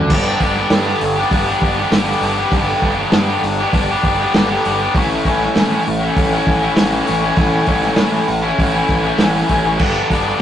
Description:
garage rock duo or trio; 99 BPM; 4/4; straight; A4 = 440 Hz
raw garage guitar; riff; 0.0-10.4 s; G2 to G4; -16 LUFS; left 1 dB; overdrive
growling picked electric bass; bass; 0.0-10.3 s; G1 to A2; -22 LUFS; right 1 dB; overdrive
vintage drum kit; drums; 0.1-10.2 s; crash cymbal, hi-hat, kick drum, snare drum; -18 LUFS; equal
light reverb; rough rehearsal-room recording, tube saturation, nothing above 10.8 kHz; -13 LUFS; side -10 dB against mid
0.1-10.4 A section
0.1 G; 4.9 A; 9.8 G

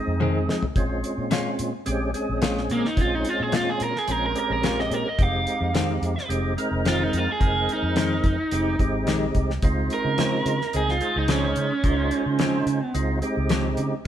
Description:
straight-eighth soul blues; 108 BPM; 4/4; straight; A4 = 445 Hz
percussive tonewheel organ; accompaniment; 0.0-14.0 s; Ab3 to C5; -27 LUFS; right 1 dB; slow rotary speaker, overdrive, chorus vibrato
vintage muted fingered electric bass; bass; 0.1-13.9 s; F1 to F3; -28 LUFS; equal
direct-recorded clean electric guitar; stabs; 0.2-13.7 s; F2 to F4; -28 LUFS; left 4 dB
cloth-damped thuddy drum kit; drums; 0.2-13.9 s; hi-hat, kick drum, snare drum, toms; -27 LUFS; equal
crunchy overdriven guitar; melody; 2.7-12.9 s; Bb3 to F5; -25 LUFS; right 2 dB; spring reverb
moderate stone room reverb, RT60 1.4 s; band playing live in one room; -21 LUFS; side -10 dB against mid
0.0-14.1 A section
overdriven electric guitar solo 0.0-14.1; drum fill 0.2-0.8
0.0 Fm7; 0.8 Bbm7; 5.2 Fm7; 9.6 Dbmaj7

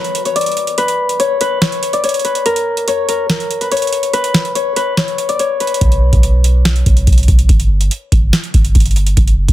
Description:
hip hop, trap; 143 BPM; 4/4; half-time; B harmonic minor; A4 = 440 Hz
Celtic harp; melody; 0.0-7.7 s; A#4 to D5; -16 LUFS; left 3 dB; digital delay
booming analog drum machine; drums; 0.0-9.5 s; hi-hat, kick drum, snare drum; -14 LUFS; equal
clean 808-style bass; bass; 5.8-9.5 s; F#1 to B1; -11 LUFS; equal
digital ambience; dense, heavily limited modern master; -11 LUFS; side -14 dB against mid
0.0-9.5 A section
break 0.0-5.8

